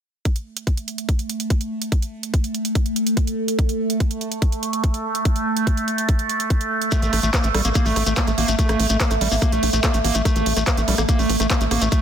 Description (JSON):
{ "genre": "psychedelic trance", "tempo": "144 BPM", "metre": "4/4", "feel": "straight", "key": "unclear", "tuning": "A4 = 442 Hz", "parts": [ { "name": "overtone-sweeping drone", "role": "sustained chords", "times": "0.9-12.0 s", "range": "A3", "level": "-24 LUFS", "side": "right 1 dB", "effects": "chorus, built-in reverb, sidechain pumping" }, { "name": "drum and bass drum kit", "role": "drums", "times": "0.3-12.0 s", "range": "handclaps, hi-hat, rim click", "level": "-26 LUFS", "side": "right 2 dB", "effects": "overdrive" }, { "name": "electronic kick drum", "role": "drums", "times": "0.3-12.0 s", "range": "none", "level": "-19 LUFS", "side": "equal", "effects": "overdrive" }, { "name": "vowel-sweep wobble bass", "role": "second line", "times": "6.9-11.0 s", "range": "A3", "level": "-37 LUFS", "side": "right 2 dB", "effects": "none" }, { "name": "overdriven acid bass", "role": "riff", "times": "6.9-12.0 s", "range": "G3 to Bb3", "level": "-24 LUFS", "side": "right 1 dB", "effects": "distortion, auto-pan, vintage 12-bit sampler grit, sidechain pumping, digital delay" }, { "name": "shekere", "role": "percussion", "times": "6.9-12.0 s", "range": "none", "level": "-30 LUFS", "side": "left 3 dB", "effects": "none" }, { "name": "tight sequencer bass", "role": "bass", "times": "7.0-11.9 s", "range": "A1 to Bb1", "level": "-22 LUFS", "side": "equal", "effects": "none" } ], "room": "light reverb", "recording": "dense, heavily limited modern master", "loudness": "-18 LUFS", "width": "side -8 dB against mid", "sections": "0.3-12.0 A section", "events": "none", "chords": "0.3 A5" }